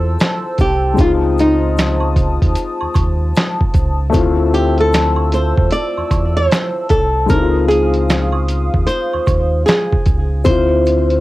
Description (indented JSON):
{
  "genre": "lo-fi hip hop",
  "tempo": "76 BPM",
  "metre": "4/4",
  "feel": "swing 64% on 16ths",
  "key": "unclear",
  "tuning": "A4 = 440 Hz",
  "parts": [
    { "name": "flamenco guitar", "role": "melody", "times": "0.0-11.2 s", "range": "Eb4 to D5", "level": "-18 LUFS", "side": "right 1 dB", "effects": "cassette tape, analog delay" },
    { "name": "felt-muted upright piano", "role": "accompaniment", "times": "0.0-11.2 s", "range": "Ab3 to F4", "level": "-20 LUFS", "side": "left 5 dB", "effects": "cassette tape" },
    { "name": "hollow soft pad", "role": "sustained chords", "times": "0.0-10.4 s", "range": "C5 to E6", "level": "-26 LUFS", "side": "equal", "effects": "chorus" },
    { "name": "sub bass with octave", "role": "bass", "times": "0.0-11.2 s", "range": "C2 to E2", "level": "-17 LUFS", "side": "equal", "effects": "none" },
    { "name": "lo-fi sampler-style drum kit", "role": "drums", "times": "0.2-11.2 s", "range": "finger snaps, hi-hat, kick drum, snare drum", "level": "-16 LUFS", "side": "equal", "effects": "none" },
    { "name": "egg shaker and woodblock", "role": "percussion", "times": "0.2-11.1 s", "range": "none", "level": "-30 LUFS", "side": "right 7 dB", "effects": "none" }
  ],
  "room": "light reverb",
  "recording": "home recording on cassette",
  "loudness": "-13 LUFS",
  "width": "side -17 dB against mid",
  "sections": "0.0-11.2 A section",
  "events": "none",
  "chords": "0.0 Dm9 (rootless); 1.0 Dbmaj9; 4.1 Dm9; 7.3 Dbmaj9; 10.5 Dm9"
}